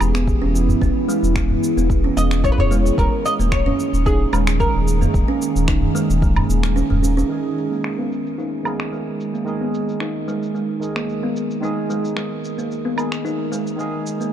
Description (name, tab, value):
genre	organic downtempo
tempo	111 BPM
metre	4/4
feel	swing 53% on 16ths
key	G# minor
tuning	A4 = 440 Hz
part	oud	melody	0.0-4.9 s	G#4 to D#5	-25 LUFS	left 1 dB	ping-pong delay
part	warbly tape-like pad	sustained chords	0.0-14.3 s	D#3 to A#4	-25 LUFS	right 2 dB	chorus, built-in reverb, phaser, sidechain pumping
part	warm sub bass	bass	0.0-7.2 s	D#1 to E1	-19 LUFS	equal	none
part	electronic woodblock, shaker and finger snaps	drums	0.0-14.3 s	none	-29 LUFS	right 1 dB	overdrive, low-pass filter on perc, low-pass filter on snare
part	kalimba	arpeggios	0.1-14.3 s	G#3 to E4	-24 LUFS	right 1 dB	low-pass filter, ping-pong delay
part	electronic kick drum	drums	0.3-6.3 s	none	-21 LUFS	equal	overdrive
part	udu	percussion	0.7-7.0 s	none	-24 LUFS	right 1 dB	none
part	barky tine electric piano	accompaniment	7.3-14.3 s	D#3 to A#4	-26 LUFS	right 4 dB	analog chorus, sidechain pumping, ping-pong delay
room	light reverb, small room ambience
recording	dark, warm production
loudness	-17 LUFS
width	side -10 dB against mid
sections	0.0-7.3 A section; 7.3-14.3 B section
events	filter sweep on kalimba 0.0-7.3, 7.3-14.3; kick drops out 6.8-7.3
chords	0.0 E; 3.0 D#7sus4; 7.3 G#madd9